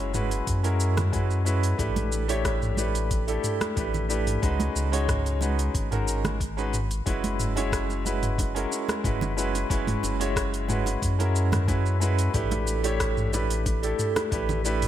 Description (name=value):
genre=sunset chillout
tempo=91 BPM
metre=4/4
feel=straight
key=unclear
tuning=A4 = 440 Hz
part: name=bright concert grand piano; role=accompaniment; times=0.0-14.9 s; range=G#3 to C#5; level=-28 LUFS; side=right 1 dB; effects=auto-pan, low-pass filter, tape echo
part: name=warm sub bass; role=bass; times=0.0-14.9 s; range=F#1 to F#2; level=-27 LUFS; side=equal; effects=none
part: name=smooth R&B drum kit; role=drums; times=0.1-14.9 s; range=hi-hat, rim click, shaker, toms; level=-31 LUFS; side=equal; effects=none
part: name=congas and bongos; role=percussion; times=0.1-14.6 s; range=none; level=-35 LUFS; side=right 4 dB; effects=none
part: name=electronic kick drum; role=drums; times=0.5-14.5 s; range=none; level=-30 LUFS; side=equal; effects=none
room=light reverb, digital ambience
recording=none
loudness=-23 LUFS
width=side -11 dB against mid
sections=0.0-14.9 A section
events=none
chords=0.0 F#9sus4; 1.8 A9sus4; 4.4 C#9sus4; 7.1 F#9sus4; 12.3 A9sus4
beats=0.47 1.13 | 1.79 2.45 3.11 3.77 | 4.43 5.09 5.75 6.41 | 7.07 7.73 8.39 9.04 | 9.70 10.36 11.02 11.68 | 12.34 13.00 13.66 14.32